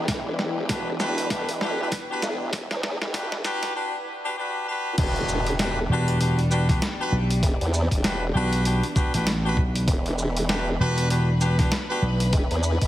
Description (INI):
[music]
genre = glitch hop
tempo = 98 BPM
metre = 4/4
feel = swing 59% on 16ths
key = E minor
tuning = A4 = 440 Hz
[part]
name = warm studio string section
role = sustained chords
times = 0.0-12.9 s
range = E3 to B4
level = -34 LUFS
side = equal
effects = sidechain pumping, low-pass filter
[part]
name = formant-sweep wobble bass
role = bass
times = 0.0-12.9 s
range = E1 to E2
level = -27 LUFS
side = equal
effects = chorus, tube saturation, high-pass filter
[part]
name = granular cloud pad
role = texture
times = 0.0-3.8 s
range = E4 to G5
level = -37 LUFS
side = equal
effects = built-in reverb, sidechain pumping
[part]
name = boom bap sampler-style drum kit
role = drums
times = 0.1-12.9 s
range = crash cymbal, hi-hat, shaker, snare drum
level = -29 LUFS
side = equal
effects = studio reverb
[part]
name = electronic kick drum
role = drums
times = 0.1-12.9 s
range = none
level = -24 LUFS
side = equal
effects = studio reverb
[part]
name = clear horn section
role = stabs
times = 0.7-12.0 s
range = D4 to B4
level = -28 LUFS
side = left 1 dB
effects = sidechain pumping, low-pass filter, tape echo
[part]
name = impact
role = sound effects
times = 5.0-7.4 s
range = none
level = -34 LUFS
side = equal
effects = none
[part]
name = vintage slap bass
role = bass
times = 5.9-12.3 s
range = E1 to B1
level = -22 LUFS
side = equal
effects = none
[sound]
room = light reverb, digital ambience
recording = heavily compressed radio sound, high-pass filter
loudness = -22 LUFS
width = side -14 dB against mid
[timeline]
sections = 0.0-5.0 A section; 5.0-12.9 B section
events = build-up 0.0-5.0; drum fill 0.0-3.8; drop 5.0-12.9; impact 5.0-7.4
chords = 0.0 Em7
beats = | 0.08 0.69 1.31 1.92 | 2.53 3.14 3.76 4.37 | 4.98 5.59 6.21 6.82 | 7.43 8.04 8.65 9.27 | 9.88 10.49 11.10 11.72 | 12.33